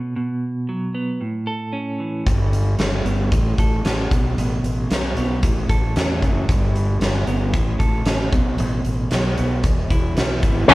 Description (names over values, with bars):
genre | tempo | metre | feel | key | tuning
quiet-loud alternative rock | 114 BPM | 4/4 | straight | unclear | A4 = 441 Hz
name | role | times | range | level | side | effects
clean electric guitar | arpeggios | 0.0-10.7 s | E2 to A4 | -24 LUFS | right 1 dB | tremolo
fuzz fingered electric bass | bass | 2.3-10.7 s | E1 to E2 | -22 LUFS | equal | overdrive
huge arena drum kit | drums | 2.3-10.7 s | crash cymbal, hi-hat, kick drum, snare drum | -20 LUFS | equal | none
octave-fuzz lead guitar | melody | 10.7 s | C#4 to C#5 | -9 LUFS | left 2 dB | distortion
distorted electric guitar | riff | 10.7 s | F#2 to C#3 | -12 LUFS | right 5 dB | overdrive
tight distorted guitar | riff | 10.7 s | F#2 to C#4 | -12 LUFS | left 8 dB | distortion
room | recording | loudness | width
light reverb | band playing live in one room, cassette tape | -18 LUFS | side -18 dB against mid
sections
0.0-10.7 A section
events
none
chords
0.0 B5; 1.2 A; 2.3 G; 3.3 A; 4.1 B5; 5.4 A; 6.5 G; 7.5 A; 8.3 B5; 9.6 E